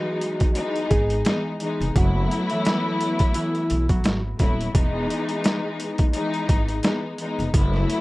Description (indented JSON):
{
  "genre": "hip hop, boom-bap hip-hop",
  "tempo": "86 BPM",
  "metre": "4/4",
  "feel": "swing 55% on 16ths",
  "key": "E major",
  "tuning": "A4 = 440 Hz",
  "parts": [
    { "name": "mellow electric guitar", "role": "melody", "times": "0.0-4.2 s", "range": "E3 to G#4", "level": "-27 LUFS", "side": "equal", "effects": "phaser, high-pass filter, low-pass filter, tape echo" },
    { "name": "warm studio string section", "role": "accompaniment", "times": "0.0-8.0 s", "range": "E3 to E4", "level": "-25 LUFS", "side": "left 2 dB", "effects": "cassette tape, high-pass filter, low-pass filter" },
    { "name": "boom bap sampler-style drum kit", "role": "drums", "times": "0.2-8.0 s", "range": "hi-hat, kick drum, snare drum", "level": "-22 LUFS", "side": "equal", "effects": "overdrive" },
    { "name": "upright bass", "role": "bass", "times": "0.9-7.8 s", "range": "D#1 to B1", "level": "-24 LUFS", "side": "equal", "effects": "none" }
  ],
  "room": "light reverb",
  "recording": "none",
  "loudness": "-20 LUFS",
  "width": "side -20 dB against mid",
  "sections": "0.0-8.0 A section",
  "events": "none",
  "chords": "0.0 Emaj7; 2.0 B7sus4/F#; 4.7 Emaj7"
}